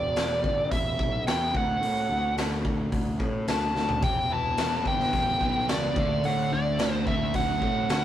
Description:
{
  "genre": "classic rock",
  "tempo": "109 BPM",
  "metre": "4/4",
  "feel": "straight",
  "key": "unclear",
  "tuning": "A4 = 440 Hz",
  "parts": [
    { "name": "biting lead guitar", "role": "melody", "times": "0.0-8.0 s", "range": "D5 to A5", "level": "-27 LUFS", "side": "right 1 dB", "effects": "overdrive" },
    { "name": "fuzz picked electric bass", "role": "bass", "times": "0.0-8.0 s", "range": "E1 to A2", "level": "-30 LUFS", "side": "equal", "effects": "overdrive" },
    { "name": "raw garage drum kit", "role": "drums", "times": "0.2-8.0 s", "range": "hi-hat, kick drum, snare drum, toms", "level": "-29 LUFS", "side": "equal", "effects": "none" },
    { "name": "sludgy distorted guitar", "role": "riff", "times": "4.0-8.0 s", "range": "D3 to E4", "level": "-31 LUFS", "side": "left 1 dB", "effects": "overdrive" }
  ],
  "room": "moderate stone room reverb, RT60 0.9 s",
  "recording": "rough rehearsal-room recording, tube saturation",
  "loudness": "-24 LUFS",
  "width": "side -11 dB against mid",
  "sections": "0.0-8.0 A section",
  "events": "drum fill 3.8",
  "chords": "0.0 Em; 1.5 D; 4.0 Em; 6.0 D"
}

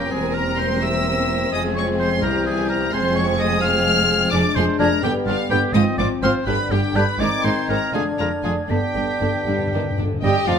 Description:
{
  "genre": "quick classical-period movement for symphony orchestra",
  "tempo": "77-86 BPM (dotted quarters)",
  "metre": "6/8",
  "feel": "rubato",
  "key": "F minor",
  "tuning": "A4 = 442 Hz",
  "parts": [
    { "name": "rich studio violin section", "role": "melody", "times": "0.0-10.6 s", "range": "F5 to F6", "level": "-26 LUFS", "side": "left 2 dB", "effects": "none" },
    { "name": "clear studio violin section", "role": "second line", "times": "0.0-10.6 s", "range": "C4 to Bb4", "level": "-29 LUFS", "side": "left 3 dB", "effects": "none" },
    { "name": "silver concert flute", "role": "second line", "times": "0.0-10.6 s", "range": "F5 to B6", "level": "-29 LUFS", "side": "equal", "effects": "none" },
    { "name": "warm oboe", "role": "second line", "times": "0.0-10.6 s", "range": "F4 to F5", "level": "-27 LUFS", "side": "right 1 dB", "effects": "none" },
    { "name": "mellow bassoon", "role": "accompaniment", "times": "0.0-10.6 s", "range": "F3 to Eb4", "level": "-27 LUFS", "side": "right 1 dB", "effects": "none" },
    { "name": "rich studio viola section", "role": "accompaniment", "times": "0.0-10.6 s", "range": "D3 to Eb5", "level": "-27 LUFS", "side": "equal", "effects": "none" },
    { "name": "dark French horn section", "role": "sustained chords", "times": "0.0-10.6 s", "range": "D3 to G4", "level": "-25 LUFS", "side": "left 5 dB", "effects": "none" },
    { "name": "rich studio cello section", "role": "bass", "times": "0.0-10.5 s", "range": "C2 to Ab2", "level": "-26 LUFS", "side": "right 2 dB", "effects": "none" },
    { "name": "rich studio double bass section", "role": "bass", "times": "0.0-10.6 s", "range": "E1 to C2", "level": "-28 LUFS", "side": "right 4 dB", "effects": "none" },
    { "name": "timpani", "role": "percussion", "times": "8.7-10.2 s", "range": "G2", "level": "-27 LUFS", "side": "left 2 dB", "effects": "none" }
  ],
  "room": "moderate recital hall reverb, RT60 1.5 s",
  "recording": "close, detailed microphones",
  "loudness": "-17 LUFS",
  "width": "side -7 dB against mid",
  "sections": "0.0-10.2 A section",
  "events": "timpani fill 8.7-10.2",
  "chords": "0.1 C7/E; 1.5 Fm; 2.2 C; 2.9 Fm; 4.3 Ddim/F; 5.0 G; 5.7 Fm; 6.5 G5; 7.2 Ab; 7.9 Ddim; 8.7 G"
}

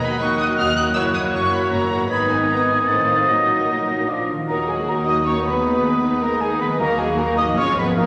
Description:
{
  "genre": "classical",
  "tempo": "146-161 BPM",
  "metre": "3/4",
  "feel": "rubato",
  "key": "Eb minor",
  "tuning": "A4 = 442 Hz",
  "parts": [
    { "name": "warm symphonic violin section", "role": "melody", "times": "0.0-8.1 s", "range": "Ab4 to Gb6", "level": "-31 LUFS", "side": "equal", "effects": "none" },
    { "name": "concert flute", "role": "second line", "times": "0.0-8.1 s", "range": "Ab5 to Bb6", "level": "-27 LUFS", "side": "equal", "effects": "none" },
    { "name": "dark symphonic violin section", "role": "second line", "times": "0.0-8.1 s", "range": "Eb4 to Eb5", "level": "-30 LUFS", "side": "equal", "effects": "none" },
    { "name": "mellow clarinet", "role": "second line", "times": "0.0-8.1 s", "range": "Eb4 to C5", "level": "-37 LUFS", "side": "equal", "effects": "none" },
    { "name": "warm oboe", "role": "second line", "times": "0.0-8.1 s", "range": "Db5 to F5", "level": "-25 LUFS", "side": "equal", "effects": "none" },
    { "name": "warm bassoon", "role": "accompaniment", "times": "0.0-8.1 s", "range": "Eb3 to Bb3", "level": "-29 LUFS", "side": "equal", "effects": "none" },
    { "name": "warm symphonic viola section", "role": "accompaniment", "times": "0.0-8.1 s", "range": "Eb3 to Ab4", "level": "-31 LUFS", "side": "equal", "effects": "none" },
    { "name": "mellow French horn section", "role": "sustained chords", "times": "0.0-8.1 s", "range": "Eb3 to Eb4", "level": "-29 LUFS", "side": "equal", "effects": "none" },
    { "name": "concert harp", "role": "arpeggios", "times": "0.0-8.1 s", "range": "Gb2 to Cb5", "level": "-32 LUFS", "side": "equal", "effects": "none" },
    { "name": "warm symphonic cello section", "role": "bass", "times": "0.0-8.1 s", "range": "Eb2 to Bb2", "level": "-33 LUFS", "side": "equal", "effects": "none" },
    { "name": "warm symphonic double bass section", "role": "bass", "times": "0.0-8.1 s", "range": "Gb1 to Eb2", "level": "-33 LUFS", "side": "equal", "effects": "none" },
    { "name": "timpani", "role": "percussion", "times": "6.8-7.3 s", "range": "Eb3", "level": "-38 LUFS", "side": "equal", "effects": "none" }
  ],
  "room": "wet scoring stage reverb, RT60 2.0 s",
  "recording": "none",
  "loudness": "-19 LUFS",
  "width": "mono",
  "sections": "0.0-4.5 A section; 4.5-8.1 B section",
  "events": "none",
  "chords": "0.0 Ebm; 1.0 Gb7; 2.1 Abm; 2.9 Adim7; 3.3 Ebm/Bb; 4.1 Bb; 4.5 Ebm; 5.7 Abm/Eb; 6.8 Ebm; 7.6 Fdim/Ab"
}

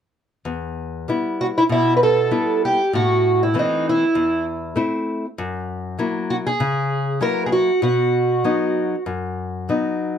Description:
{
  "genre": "fado-style ballad",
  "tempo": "97 BPM",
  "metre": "4/4",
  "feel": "rubato",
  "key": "E harmonic minor",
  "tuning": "A4 = 438 Hz",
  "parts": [
    { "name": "nylon-string guitar", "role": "accompaniment", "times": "0.5-10.2 s", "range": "E2 to E4", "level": "-22 LUFS", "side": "left 3 dB", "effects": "none" },
    { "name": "fingerpicked twelve-string acoustic guitar", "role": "melody", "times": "1.4-9.0 s", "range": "D#4 to B4", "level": "-18 LUFS", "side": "right 2 dB", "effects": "plate reverb" }
  ],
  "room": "moderate small room ambience, RT60 0.5 s",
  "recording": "none",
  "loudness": "-18 LUFS",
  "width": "side -8 dB against mid",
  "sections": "0.4-10.2 A section",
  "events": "none",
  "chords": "0.4 Em; 2.9 Am; 5.4 F#7; 7.8 B"
}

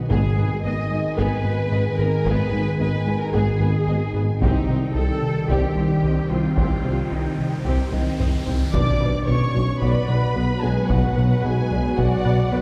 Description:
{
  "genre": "cinematic, hybrid orchestral and electronic film score",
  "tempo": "111 BPM",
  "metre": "4/4",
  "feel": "straight",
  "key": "unclear",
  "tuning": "A4 = 440 Hz",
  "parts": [
    { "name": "rich symphonic violin section", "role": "melody", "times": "0.0-12.6 s", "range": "F#5 to D6", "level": "-36 LUFS", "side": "equal", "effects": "none" },
    { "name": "ethereal airy pad", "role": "sustained chords", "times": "0.0-12.6 s", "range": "Eb3 to Eb5", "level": "-31 LUFS", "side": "equal", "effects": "none" },
    { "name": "dark baby grand piano", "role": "texture", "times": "0.0-12.6 s", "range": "B3 to Ab5", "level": "-40 LUFS", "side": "equal", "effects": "none" },
    { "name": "warm symphonic violin section", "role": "second line", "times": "0.1-12.6 s", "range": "F#4 to Eb5", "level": "-35 LUFS", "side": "equal", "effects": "none" },
    { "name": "warm symphonic viola section", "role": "accompaniment", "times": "0.1-12.6 s", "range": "Cb4 to D5", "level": "-35 LUFS", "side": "equal", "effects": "none" },
    { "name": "warm trombone section", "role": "sustained chords", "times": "0.1-12.6 s", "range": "B2 to Ab3", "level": "-32 LUFS", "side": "equal", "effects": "none" },
    { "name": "resonant blip pluck", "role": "arpeggios", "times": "0.1-12.6 s", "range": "C3 to B4", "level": "-36 LUFS", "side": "equal", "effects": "none" },
    { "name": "rubbery square bass", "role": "riff", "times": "0.1-12.6 s", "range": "C2 to B3", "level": "-26 LUFS", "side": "equal", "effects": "none" },
    { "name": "rich symphonic cello section", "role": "bass", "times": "0.1-12.6 s", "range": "B2 to Eb5", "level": "-32 LUFS", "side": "equal", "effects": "none" },
    { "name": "rich symphonic double bass section", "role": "bass", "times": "0.1-12.6 s", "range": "Ab1 to C2", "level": "-31 LUFS", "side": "equal", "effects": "none" },
    { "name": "warm tuba", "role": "bass", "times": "0.1-12.6 s", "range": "Ab1 to C2", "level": "-32 LUFS", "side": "equal", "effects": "none" },
    { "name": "taiko ensemble", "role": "drums", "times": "0.1-12.5 s", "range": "none", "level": "-31 LUFS", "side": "equal", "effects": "none" },
    { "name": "riser and impact", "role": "sound effects", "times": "6.1-10.9 s", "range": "none", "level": "-37 LUFS", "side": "equal", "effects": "none" },
    { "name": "mellow French horn section", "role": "sustained chords", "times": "8.7-12.6 s", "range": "F#3 to D4", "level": "-32 LUFS", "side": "equal", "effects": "none" }
  ],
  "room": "wet scoring stage reverb, RT60 1.9 s",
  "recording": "heard from further back in the room",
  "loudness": "-21 LUFS",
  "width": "mono",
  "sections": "0.0-8.7 A section; 8.7-12.6 B section",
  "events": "riser 6.1-8.7; drum fill 7.9-8.7; impact 8.7-10.9",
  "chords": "0.1 Abm; 4.4 Cm; 8.7 Bm"
}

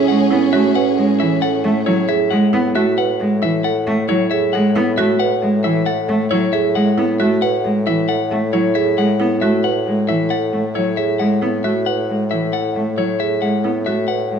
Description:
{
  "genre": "classical, minimalist pattern music",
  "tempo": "135 BPM",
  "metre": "5/4",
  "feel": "straight",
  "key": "A major",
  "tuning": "A4 = 440 Hz",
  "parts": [
    { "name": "clean electric guitar", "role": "melody", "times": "0.0-14.4 s", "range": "C#5 to F#5", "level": "-23 LUFS", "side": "left 13 dB", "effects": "none" },
    { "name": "warm French horn", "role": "second line", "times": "0.0-2.0 s", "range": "C#4", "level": "-18 LUFS", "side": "right 10 dB", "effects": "none" },
    { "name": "warm symphonic violin section", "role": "sustained chords", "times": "0.0-2.0 s", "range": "C#4 to G#4", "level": "-26 LUFS", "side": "left 4 dB", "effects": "none" },
    { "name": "marimba with medium hard mallets", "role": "arpeggios", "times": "0.0-14.4 s", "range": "E4 to B4", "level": "-20 LUFS", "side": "right 5 dB", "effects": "none" },
    { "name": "warm bassoon", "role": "bass", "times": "0.0-14.4 s", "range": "A2", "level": "-22 LUFS", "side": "left 1 dB", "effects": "none" },
    { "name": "rich cello", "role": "accompaniment", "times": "0.1-14.4 s", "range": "E3 to B3", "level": "-19 LUFS", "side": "equal", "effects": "none" }
  ],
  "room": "moderate recital hall reverb, RT60 1.6 s",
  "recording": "dark, warm production",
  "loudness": "-15 LUFS",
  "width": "side -7 dB against mid",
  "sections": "0.0-14.4 A section",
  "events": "none",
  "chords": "0.0 Amaj9"
}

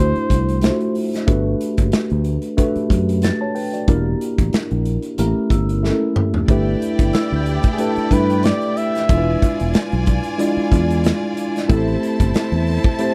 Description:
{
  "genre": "lush 1970s-style soul",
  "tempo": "92 BPM",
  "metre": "4/4",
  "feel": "swing 54% on 16ths",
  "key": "unclear",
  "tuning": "A4 = 440 Hz",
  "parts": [
    { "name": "breathy flugelhorn", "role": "melody", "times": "0.0-1.0, 7.5-9.7 s", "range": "G4 to E5", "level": "-26 LUFS", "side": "equal", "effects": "none" },
    { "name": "mellow tine electric piano", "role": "accompaniment", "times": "0.0-13.1 s", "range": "G#3 to A5", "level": "-23 LUFS", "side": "equal", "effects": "analog chorus" },
    { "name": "fingered electric bass", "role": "bass", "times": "0.0-12.8 s", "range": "E1 to G2", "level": "-22 LUFS", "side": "equal", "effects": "none" },
    { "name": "modern studio drum kit", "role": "drums", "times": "0.2-13.1 s", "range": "hi-hat, kick drum, snare drum, toms", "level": "-21 LUFS", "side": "equal", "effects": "none" },
    { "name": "large celesta", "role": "texture", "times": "3.2-9.0, 13.0-13.1 s", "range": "E6 to A6", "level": "-37 LUFS", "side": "equal", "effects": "none" },
    { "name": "clear studio violin section", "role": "second line", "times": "6.5-13.1 s", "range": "E4 to A5", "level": "-30 LUFS", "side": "equal", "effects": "none" }
  ],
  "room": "little or no reverb",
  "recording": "none",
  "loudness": "-18 LUFS",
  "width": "mono",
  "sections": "0.0-6.5 A section; 6.5-13.1 B section",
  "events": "drum fill 5.8-6.5",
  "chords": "0.0 D7; 1.3 Gmaj9; 3.9 Em7b5; 5.2 A7b9; 6.5 G69; 9.1 E7b9; 11.7 Am7"
}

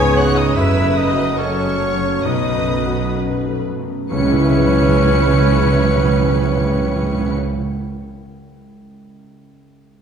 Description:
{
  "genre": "cinematic, emotional film score for orchestra",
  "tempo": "63-76 BPM",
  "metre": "4/4",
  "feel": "rubato",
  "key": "C# minor",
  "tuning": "A4 = 440 Hz",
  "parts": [
    { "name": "rich studio violin section", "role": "melody", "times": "0.0-7.3 s", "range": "C#6 to C#7", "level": "-30 LUFS", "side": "left 3 dB", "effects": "none" },
    { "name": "clear studio violin section", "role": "second line", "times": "0.0-7.3 s", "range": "C#5 to G#5", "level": "-31 LUFS", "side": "left 2 dB", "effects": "none" },
    { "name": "mellow cor anglais", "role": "second line", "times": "0.0-7.3 s", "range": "C#4 to G#4", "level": "-25 LUFS", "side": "equal", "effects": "none" },
    { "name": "silver concert flute", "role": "second line", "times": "0.0-7.3 s", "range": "C#5 to G#5", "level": "-26 LUFS", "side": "right 1 dB", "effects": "none" },
    { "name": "clear studio viola section", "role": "accompaniment", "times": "0.0-7.3 s", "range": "E4 to C#5", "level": "-23 LUFS", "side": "right 2 dB", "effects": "none" },
    { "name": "felt-muted upright piano", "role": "accompaniment", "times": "0.0-10.0 s", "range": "B1 to E5", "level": "-23 LUFS", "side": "right 1 dB", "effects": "none" },
    { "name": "warm French horn section", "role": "sustained chords", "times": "0.0-7.4 s", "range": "E3 to B4", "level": "-24 LUFS", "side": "left 4 dB", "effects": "none" },
    { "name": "concert harp", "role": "arpeggios", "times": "0.0-8.0 s", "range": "F#2 to E5", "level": "-26 LUFS", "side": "left 3 dB", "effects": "none" },
    { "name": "rich studio double bass section", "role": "bass", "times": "0.0-7.3 s", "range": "F#1 to C#2", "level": "-23 LUFS", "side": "right 2 dB", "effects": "none" },
    { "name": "warm studio cello section", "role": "bass", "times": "0.0-7.3 s", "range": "F#2 to C#3", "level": "-23 LUFS", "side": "right 4 dB", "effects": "none" },
    { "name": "timpani", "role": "percussion", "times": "4.1-7.3 s", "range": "C#3", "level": "-21 LUFS", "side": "right 2 dB", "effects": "none" }
  ],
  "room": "wet scoring stage reverb, RT60 1.9 s",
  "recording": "heard from further back in the room",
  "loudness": "-14 LUFS",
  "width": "side -7 dB against mid",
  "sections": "0.0-4.1 A section; 4.1-7.8 B section",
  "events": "slowing down 0.0-4.1",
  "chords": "0.0 C#7(no3); 0.6 F#m; 2.3 B7; 4.1 C#m7"
}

